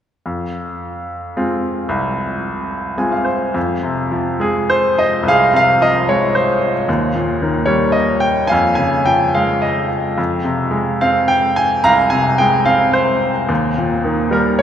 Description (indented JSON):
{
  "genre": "classical, lyrical solo piano",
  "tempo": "109 BPM",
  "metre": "3/4",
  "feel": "rubato",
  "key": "F minor",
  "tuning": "A4 = 440 Hz",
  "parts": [
    { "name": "bright baby grand piano", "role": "solo", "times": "0.3-14.6 s", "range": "C2 to Bb5", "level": "-14 LUFS", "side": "equal", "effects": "none" }
  ],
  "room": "wet cathedral reverb, RT60 5.5 s",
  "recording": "recorded in a church or concert hall",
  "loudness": "-14 LUFS",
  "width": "side -9 dB against mid",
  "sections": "0.3-3.6 A section; 3.6-14.6 B section",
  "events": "grand piano fill 2.7-3.6",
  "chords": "0.3 Fm; 6.9 Eb; 8.5 Db/F; 10.2 Fm; 13.5 Eb"
}